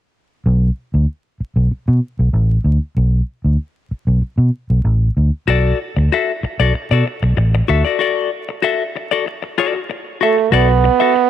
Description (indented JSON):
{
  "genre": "funk",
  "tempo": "95 BPM",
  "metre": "4/4",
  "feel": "straight",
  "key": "B minor",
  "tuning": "A4 = 441 Hz",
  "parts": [
    { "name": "vintage muted fingered electric bass", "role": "bass", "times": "0.5-10.9 s", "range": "A1 to B2", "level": "-13 LUFS", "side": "equal", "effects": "none" },
    { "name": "clean electric guitar", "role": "accompaniment", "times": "5.5-11.2 s", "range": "F#4 to E5", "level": "-18 LUFS", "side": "left 8 dB", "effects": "none" },
    { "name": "clear trombone", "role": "melody", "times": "10.2-11.3 s", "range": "A3 to B3", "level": "-13 LUFS", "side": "right 10 dB", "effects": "none" }
  ],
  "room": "light reverb, small room ambience",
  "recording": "1960s-style stereo with parts hard left and right, vinyl crackle",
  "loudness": "-14 LUFS",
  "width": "side -11 dB against mid",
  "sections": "0.5-10.5 A section",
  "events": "break 8.0-10.5",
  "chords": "0.5 Bm7",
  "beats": "| 0.46 1.08 1.71 2.34 | 2.97 3.60 4.23 4.86 | 5.49 6.12 6.75 7.38 | 8.00 8.63 9.26 9.89 | 10.52 11.15"
}